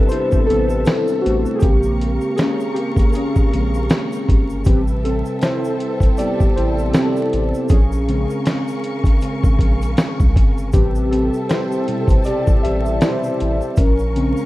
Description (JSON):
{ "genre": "lo-fi hip hop", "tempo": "79 BPM", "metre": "4/4", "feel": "swing 57% on 16ths", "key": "unclear", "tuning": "A4 = 441 Hz", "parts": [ { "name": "warbly lo-fi synth keys", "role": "accompaniment", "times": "0.0-14.5 s", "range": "B2 to E5", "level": "-19 LUFS", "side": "equal", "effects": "chorus" }, { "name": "warm studio string section", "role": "sustained chords", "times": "0.0-14.5 s", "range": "A4 to Db6", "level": "-31 LUFS", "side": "equal", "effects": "none" }, { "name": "soft dub sub bass", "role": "bass", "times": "0.0-14.3 s", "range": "G1 to C2", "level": "-21 LUFS", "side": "equal", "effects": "none" }, { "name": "dusty soul sampler-style drum kit", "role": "drums", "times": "0.1-14.4 s", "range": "hi-hat, kick drum, snare drum", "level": "-16 LUFS", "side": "equal", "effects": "none" }, { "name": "tube shaker", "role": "percussion", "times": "0.1-14.5 s", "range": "none", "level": "-48 LUFS", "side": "right 4 dB", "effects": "none" } ], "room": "little or no reverb", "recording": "rough home demo mix, vinyl crackle", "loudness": "-15 LUFS", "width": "side -17 dB against mid", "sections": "0.0-14.5 A section", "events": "synth keys solo 0.0-14.5", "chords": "0.0 Am7; 1.6 Bbm7; 4.7 Am7; 7.7 Bbm7; 10.7 Am7; 13.8 Bbm7", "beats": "0.11 0.86 | 1.62 2.38 3.14 3.90 | 4.66 5.42 6.18 6.94 | 7.70 8.46 9.22 9.98 | 10.74 11.50 12.26 13.02 | 13.78" }